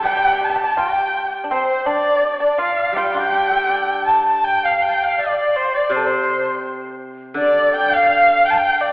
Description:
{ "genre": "chinese traditional, Chinese chamber ensemble", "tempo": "82 BPM", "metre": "2/4", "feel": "rubato", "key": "G shang mode", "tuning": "A4 = 440 Hz", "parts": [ { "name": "dark erhu", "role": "melody", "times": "0.0-8.9 s", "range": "A4 to A5", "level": "-17 LUFS", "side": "equal", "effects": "none" }, { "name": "dizi", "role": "second line", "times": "0.0-8.9 s", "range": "C5 to A5", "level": "-21 LUFS", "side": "equal", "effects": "none" }, { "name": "pipa", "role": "second line", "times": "0.0-4.0 s", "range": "C4 to G4", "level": "-23 LUFS", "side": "right 1 dB", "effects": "none" }, { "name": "steel-string zither", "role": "accompaniment", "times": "0.0-8.9 s", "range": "C3 to D5", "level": "-26 LUFS", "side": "equal", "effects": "none" } ], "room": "wet concert hall reverb, RT60 2.2 s", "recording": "recorded in a church or concert hall, telephone sound", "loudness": "-15 LUFS", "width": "side -23 dB against mid", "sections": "0.0-4.4 A section; 4.4-8.9 B section", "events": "none", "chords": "none", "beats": "| 0.05 0.78 | 1.50 2.22 | 2.95 3.69 | 4.44 5.18 | 5.91 6.64 | 7.37 8.09 | 8.82" }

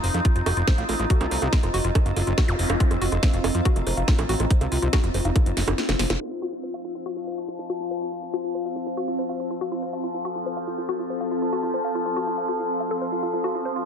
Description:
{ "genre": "psychedelic trance", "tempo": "141 BPM", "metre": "4/4", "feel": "straight", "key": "unclear", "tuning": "A4 = 440 Hz", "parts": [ { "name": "vowel-sweep wobble bass", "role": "second line", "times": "0.0-5.4 s", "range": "A3 to Eb4", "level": "-39 LUFS", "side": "right 2 dB", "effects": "none" }, { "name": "overtone-sweeping drone", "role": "sustained chords", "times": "0.0-13.9 s", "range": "F3 to A4", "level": "-29 LUFS", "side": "left 2 dB", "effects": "chorus, built-in reverb, sidechain pumping" }, { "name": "woody wave-folded pluck", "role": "riff", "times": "0.0-13.8 s", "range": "F4 to F5", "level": "-31 LUFS", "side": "moving between left 5 dB and right 2 dB", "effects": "chorus, auto-pan, sidechain pumping, tape echo" }, { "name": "fat analog bass", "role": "bass", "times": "0.0-6.2 s", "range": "F1 to F2", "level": "-25 LUFS", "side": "equal", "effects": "none" }, { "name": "drum and bass drum kit", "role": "drums", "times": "0.0-6.2 s", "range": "bongos, hi-hat, snare drum", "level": "-28 LUFS", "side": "right 3 dB", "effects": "low-pass filter on hats, low-pass filter on snare, low-pass filter on perc, low-pass filter on room" }, { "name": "granular cloud pad", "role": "texture", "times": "0.0-13.9 s", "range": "C4 to C6", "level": "-31 LUFS", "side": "equal", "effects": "built-in reverb, sidechain pumping" }, { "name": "electronic kick drum", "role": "drums", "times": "0.2-5.4 s", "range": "none", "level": "-20 LUFS", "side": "equal", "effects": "none" }, { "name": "zap", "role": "sound effects", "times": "2.5-2.6 s", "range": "none", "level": "-33 LUFS", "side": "equal", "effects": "none" } ], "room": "light reverb", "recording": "low-pass filter", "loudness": "-22 LUFS", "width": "side -7 dB against mid", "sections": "0.0-6.2 A section; 6.2-13.9 B section", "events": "drum fill 5.6-6.2; kick drops out 5.8-6.2; band accent 6.1; filter sweep on synth arpeggio sound 6.2-13.9; filter sweep 6.2-13.9", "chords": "0.0 F5", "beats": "0.25 0.68 | 1.10 1.53 1.95 2.38 | 2.80 3.23 3.65 4.08 | 4.50 4.93 5.36 5.78 | 6.21 6.63 7.06 7.48 | 7.91 8.34 8.76 9.19 | 9.61 10.04 10.46 10.89 | 11.31 11.74 12.16 12.59 | 13.02 13.44" }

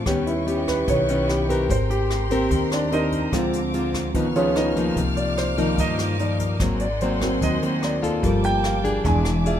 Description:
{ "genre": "bossa nova", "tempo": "147 BPM", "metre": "4/4", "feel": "straight", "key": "unclear", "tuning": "A4 = 440 Hz", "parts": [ { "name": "nylon-string guitar", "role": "accompaniment", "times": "0.0-9.6 s", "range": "G2 to Bb4", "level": "-25 LUFS", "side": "left 3 dB", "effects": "none" }, { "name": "warm grand piano", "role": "accompaniment", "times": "0.0-9.6 s", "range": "D#3 to G#5", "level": "-24 LUFS", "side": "right 2 dB", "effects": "none" }, { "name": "warm studio string section", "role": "sustained chords", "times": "0.0-9.6 s", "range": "G#4 to E#6", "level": "-32 LUFS", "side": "equal", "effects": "none" }, { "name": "upright bass", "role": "bass", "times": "0.1-9.6 s", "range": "E1 to G2", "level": "-27 LUFS", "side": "equal", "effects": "none" }, { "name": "jazz brush drum kit", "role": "drums", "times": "0.1-9.6 s", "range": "hi-hat, kick drum, rim click", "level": "-30 LUFS", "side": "equal", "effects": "none" } ], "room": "light reverb", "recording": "minimal, uncompressed stereo recording", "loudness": "-20 LUFS", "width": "side -10 dB against mid", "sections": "0.0-9.6 A section", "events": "grand piano solo 0.0-9.6", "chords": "0.1 Eb7b13; 1.7 Abmaj9; 3.3 Dm7b5; 4.1 C#9; 5.0 Cm11; 6.6 Ab9; 8.2 Gm9; 9.1 E7b9", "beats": "| 0.06 0.47 0.88 1.29 | 1.70 2.10 2.51 2.92 | 3.33 3.74 4.15 4.56 | 4.96 5.37 5.78 6.19 | 6.60 7.01 7.42 7.83 | 8.24 8.64 9.05 9.46" }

